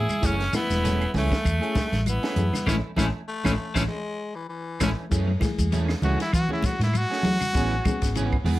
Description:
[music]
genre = afrobeat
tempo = 98 BPM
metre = 4/4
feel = swing 55% on 16ths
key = F# minor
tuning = A4 = 441 Hz
[part]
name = raspy tenor saxophone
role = melody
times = 0.0-4.9 s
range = A3 to E4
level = -29 LUFS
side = equal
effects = none
[part]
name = bright trumpet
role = second line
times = 0.0-4.9 s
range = A3 to G#4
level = -33 LUFS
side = right 2 dB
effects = none
[part]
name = mellow reed electric piano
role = accompaniment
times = 0.0-8.2 s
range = A3 to B4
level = -33 LUFS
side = left 5 dB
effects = fast tremolo
[part]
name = hollow-body short-scale fingered electric bass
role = bass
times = 0.0-8.6 s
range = E1 to F#3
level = -25 LUFS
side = equal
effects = none
[part]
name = clean electric guitar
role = arpeggios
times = 0.1-8.3 s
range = C#3 to A3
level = -32 LUFS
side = left 5 dB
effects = harmonic tremolo
[part]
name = claves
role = percussion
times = 0.1-8.5 s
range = none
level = -38 LUFS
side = right 8 dB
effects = none
[part]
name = congas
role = percussion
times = 0.1-8.6 s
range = none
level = -31 LUFS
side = right 1 dB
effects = none
[part]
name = shekere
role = percussion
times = 0.1-8.6 s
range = none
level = -35 LUFS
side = left 4 dB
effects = none
[part]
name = electric guitar at the edge of break-up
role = stabs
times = 0.2-8.6 s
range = E3 to G#4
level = -32 LUFS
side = right 4 dB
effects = analog chorus, slapback echo
[part]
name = compact cocktail drum kit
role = drums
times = 0.2-8.6 s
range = hi-hat, kick drum, ride cymbal, snare drum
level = -29 LUFS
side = equal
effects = none
[part]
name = raspy baritone saxophone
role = second line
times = 3.3-5.1 s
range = E3 to A3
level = -33 LUFS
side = left 4 dB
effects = none
[part]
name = clear trumpet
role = melody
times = 6.0-8.1 s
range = E4 to F#4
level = -27 LUFS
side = equal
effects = slapback echo
[sound]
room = light reverb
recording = none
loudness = -22 LUFS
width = side -16 dB against mid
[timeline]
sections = 0.0-5.1 A section; 5.1-8.6 B section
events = band accent 2.7-5.1; drum fill 4.2-5.1; trumpet solo 5.1-8.6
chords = 0.2 F#m9; 2.7 Amaj7; 5.1 F#m9; 7.5 Amaj9

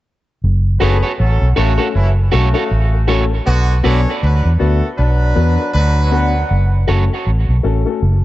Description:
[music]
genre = reggae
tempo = 79 BPM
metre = 4/4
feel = swing 59% on 16ths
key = F# minor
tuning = A4 = 440 Hz
[part]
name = vintage muted fingered electric bass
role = bass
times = 0.4-8.2 s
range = F#1 to E2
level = -13 LUFS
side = equal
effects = none
[part]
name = warm horn section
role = second line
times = 0.8-6.3 s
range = C#3 to C#5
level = -22 LUFS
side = equal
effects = tape echo
[part]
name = electric guitar at the edge of break-up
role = accompaniment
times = 0.8-7.0 s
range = F#4 to D5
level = -22 LUFS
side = right 5 dB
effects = tape echo
[part]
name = warm upright piano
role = stabs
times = 0.8-8.0 s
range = A3 to B4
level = -22 LUFS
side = left 7 dB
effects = tape echo
[part]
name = reedy concert flute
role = melody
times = 6.1-6.5 s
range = F#5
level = -25 LUFS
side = right 2 dB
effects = tape echo
[sound]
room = studio reverb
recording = echo-heavy mix, nothing above 8.0 kHz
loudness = -12 LUFS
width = side -16 dB against mid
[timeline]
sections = 0.4-6.5 A section; 6.5-8.2 B section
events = none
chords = 0.4 F#m; 3.5 Bm; 6.5 F#m

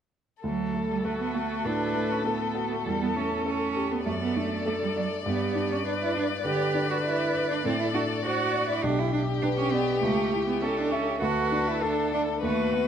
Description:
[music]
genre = quick classical-period movement for piano quartet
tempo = 100 BPM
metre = 4/4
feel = rubato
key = D major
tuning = A4 = 443 Hz
[part]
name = clear violin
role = melody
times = 0.4-12.9 s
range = G4 to D5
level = -32 LUFS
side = left 8 dB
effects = none
[part]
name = clear cello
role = second line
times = 0.4-12.9 s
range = F#3 to G4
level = -29 LUFS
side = right 5 dB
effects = none
[part]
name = clear baby grand piano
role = accompaniment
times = 0.4-12.9 s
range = B1 to E5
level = -30 LUFS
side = left 1 dB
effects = none
[part]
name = rich viola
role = accompaniment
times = 0.4-12.9 s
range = F#4 to B4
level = -33 LUFS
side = right 1 dB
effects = none
[sound]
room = wet recital hall reverb, RT60 1.5 s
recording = close, detailed microphones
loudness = -25 LUFS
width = side -8 dB against mid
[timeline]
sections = 0.4-12.9 A section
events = none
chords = 0.4 D; 2.9 A5/E; 4.1 D/F#; 5.3 G; 7.6 D7/A; 8.8 G/B; 10.0 A7/C#; 11.2 D5

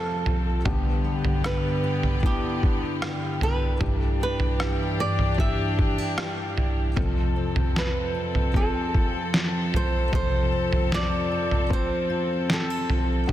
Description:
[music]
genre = pop ballad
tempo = 76 BPM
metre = 4/4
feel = straight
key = unclear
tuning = A4 = 440 Hz
[part]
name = flamenco guitar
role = melody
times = 0.0-13.1 s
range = G4 to E5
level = -30 LUFS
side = right 2 dB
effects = tape echo
[part]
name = felt-muted upright piano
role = accompaniment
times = 0.0-13.3 s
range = F2 to C5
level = -30 LUFS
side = left 4 dB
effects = none
[part]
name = warm chamber string section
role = sustained chords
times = 0.0-13.3 s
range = G2 to B4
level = -30 LUFS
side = equal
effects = none
[part]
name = fingerpicked steel-string acoustic guitar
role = arpeggios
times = 0.0-13.3 s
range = G2 to A4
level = -35 LUFS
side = right 4 dB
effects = none
[part]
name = trip hop sampler-style drum kit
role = drums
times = 0.3-13.3 s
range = kick drum, rim click, snare drum, toms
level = -25 LUFS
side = equal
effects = soft clipping on snare
[sound]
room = light reverb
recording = dense, heavily limited modern master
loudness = -22 LUFS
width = side -12 dB against mid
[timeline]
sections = 0.0-13.3 A section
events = none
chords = 0.0 F; 0.7 Em7/G; 7.0 F

